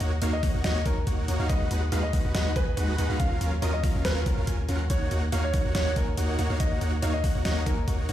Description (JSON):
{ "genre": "future bass", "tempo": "141 BPM", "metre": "4/4", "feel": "swing 53% on 16ths, half-time", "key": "unclear", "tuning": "A4 = 440 Hz", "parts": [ { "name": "supersaw chords", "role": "riff", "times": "0.0-8.1 s", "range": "Gb3 to Ab5", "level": "-31 LUFS", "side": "right 1 dB", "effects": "sidechain pumping, tape echo" }, { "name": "long sustained 808-style bass", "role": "bass", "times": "0.0-8.1 s", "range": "Eb2", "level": "-27 LUFS", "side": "equal", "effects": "sidechain pumping" }, { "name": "dubstep drum kit", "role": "drums", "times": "0.0-8.1 s", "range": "hi-hat, snare drum", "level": "-34 LUFS", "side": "equal", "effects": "overdrive" }, { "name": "clear concert grand piano", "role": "melody", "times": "0.3-8.1 s", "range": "Bb4 to F5", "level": "-34 LUFS", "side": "left 1 dB", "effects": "sidechain pumping, tape echo" }, { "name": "electronic kick drum", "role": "drums", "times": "0.4-8.0 s", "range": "none", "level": "-27 LUFS", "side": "equal", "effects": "overdrive" } ], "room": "digital ambience", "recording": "played on a big sound system in a bare room, large studio reverb", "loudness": "-24 LUFS", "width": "side -12 dB against mid", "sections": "0.0-8.1 A section", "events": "none", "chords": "0.0 Gbmaj7/Eb; 1.5 Abm7/Eb; 3.2 Gbmaj7/Eb" }